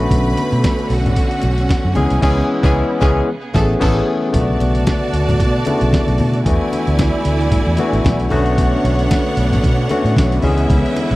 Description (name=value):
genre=disco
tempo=113 BPM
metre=4/4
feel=swing 56% on 16ths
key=B dorian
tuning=A4 = 438 Hz
part: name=clear studio string section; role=second line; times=0.0-11.2 s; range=C#4 to B5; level=-23 LUFS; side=right 2 dB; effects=tape echo
part: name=barky tine electric piano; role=accompaniment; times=0.0-11.2 s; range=C#3 to G#4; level=-19 LUFS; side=left 2 dB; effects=overdrive
part: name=bright studio string section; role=sustained chords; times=0.0-11.2 s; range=B2 to D5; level=-25 LUFS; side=right 2 dB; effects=none
part: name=vintage muted fingered electric bass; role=bass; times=0.0-11.2 s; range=A1 to B2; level=-17 LUFS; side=equal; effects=none
part: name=boom bap sampler-style drum kit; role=drums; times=0.1-11.2 s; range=crash cymbal, hi-hat, kick drum, snare drum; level=-19 LUFS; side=equal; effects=none
part: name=congas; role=percussion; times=0.4-11.1 s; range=none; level=-24 LUFS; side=left 2 dB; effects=none
room=small room reverb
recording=dry, close 1970s-style studio recording, faint mains hum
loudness=-13 LUFS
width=side -18 dB against mid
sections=0.0-4.3 A section; 4.3-11.2 B section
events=band accent 2.2-4.3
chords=0.0 Bm9; 2.0 C#m7; 3.3 Amaj9; 4.3 Bm9; 6.5 E7sus4; 8.3 Bm9; 10.4 C#m7